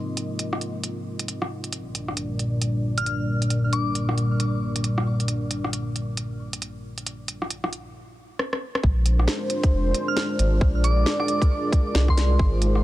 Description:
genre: future garage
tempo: 135 BPM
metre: 4/4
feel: swing 61% on 16ths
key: unclear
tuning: A4 = 440 Hz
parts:
  - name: dark analog pad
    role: sustained chords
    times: 0.0-12.8 s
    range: Bb2 to Eb5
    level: -26 LUFS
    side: equal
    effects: chorus, sidechain pumping
  - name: organic electronic drum kit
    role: drums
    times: 0.2-12.8 s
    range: hi-hat, rim click, snare drum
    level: -28 LUFS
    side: equal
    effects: overdrive, vintage 12-bit sampler grit
  - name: soft synth bell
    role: melody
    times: 3.0-4.0, 10.1-12.4 s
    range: C6 to F6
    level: -31 LUFS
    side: equal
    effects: chorus, phaser, tape echo
  - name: warm sub bass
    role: bass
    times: 8.8-12.8 s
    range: F1 to C2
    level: -20 LUFS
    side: equal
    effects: sidechain pumping
  - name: electronic kick drum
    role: drums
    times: 8.8-12.5 s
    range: none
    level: -20 LUFS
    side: equal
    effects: overdrive, vintage 12-bit sampler grit
room: light reverb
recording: dense, heavily limited modern master, cassette tape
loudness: -22 LUFS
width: side -16 dB against mid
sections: 0.0-8.8 A section; 8.8-12.8 B section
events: filter sweep on analog synth pad 0.0-8.8; drum fill 8.4-8.8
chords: 0.0 Ab69; 1.7 Gm7/Bb; 8.8 Bb9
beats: 0.40 0.84 1.28 | 1.73 2.17 2.62 3.06 | 3.51 3.95 4.39 4.84 | 5.28 5.73 6.17 6.62 | 7.06 7.51 7.95 8.39 | 8.84 9.28 9.73 10.17 | 10.62 11.06 11.51 11.95 | 12.39

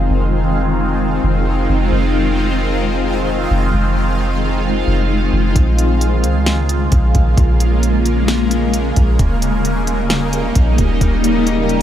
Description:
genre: hip hop, atmospheric cloud-rap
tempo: 132 BPM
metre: 4/4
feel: half-time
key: F minor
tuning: A4 = 440 Hz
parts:
  - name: shimmering ambient pad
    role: sustained chords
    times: 0.0-11.8 s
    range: Db3 to F4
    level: -17 LUFS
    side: equal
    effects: chorus, built-in reverb, phaser, sidechain pumping
  - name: soft 808-style bass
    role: bass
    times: 0.0-11.8 s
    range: Eb1 to Db2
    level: -16 LUFS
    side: equal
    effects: none
  - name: smooth R&B drum kit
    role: drums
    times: 5.6-11.8 s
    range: hi-hat, kick drum, snare drum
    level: -18 LUFS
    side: equal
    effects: none
room: light reverb, digital ambience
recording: none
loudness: -13 LUFS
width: side -10 dB against mid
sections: 0.0-11.8 A section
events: none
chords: 0.0 Fm7; 5.6 Bbm7; 9.2 Eb7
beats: | 0.10 0.56 1.01 1.47 | 1.92 2.38 2.83 3.28 | 3.74 4.19 4.65 5.10 | 5.56 6.01 6.47 6.92 | 7.38 7.83 8.28 8.74 | 9.19 9.65 10.10 10.56 | 11.01 11.47

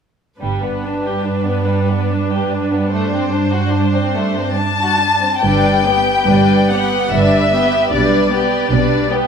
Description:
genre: classical, slow romantic movement for string orchestra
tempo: 72 BPM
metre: 3/4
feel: uneven beats, rubato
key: G major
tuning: A4 = 441 Hz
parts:
  - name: rich chamber violin section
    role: melody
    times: 0.4-9.1 s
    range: B4 to A5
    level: -18 LUFS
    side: left 4 dB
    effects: none
  - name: rich studio violin section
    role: second line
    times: 0.4-9.3 s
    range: G3 to D5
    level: -20 LUFS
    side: left 2 dB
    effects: none
  - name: clear symphonic viola section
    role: accompaniment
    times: 0.4-9.3 s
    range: G3 to D4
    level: -20 LUFS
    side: right 1 dB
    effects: none
  - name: dark chamber cello section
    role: bass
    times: 0.4-9.3 s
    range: G2 to B2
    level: -20 LUFS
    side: right 3 dB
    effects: none
  - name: rich chamber double bass section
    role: bass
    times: 0.4-1.2, 5.4-9.3 s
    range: G1 to B1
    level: -22 LUFS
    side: right 3 dB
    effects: none
room: wet recital hall reverb, RT60 1.7 s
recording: minimal, uncompressed stereo recording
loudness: -13 LUFS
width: side -6 dB against mid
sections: 0.4-5.4 A section; 5.4-9.3 B section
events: none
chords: 0.4 G; 7.9 G/B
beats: | 0.40 1.24 2.08 | 2.89 3.69 4.53 | 5.42 6.26 7.11 | 7.91 8.70

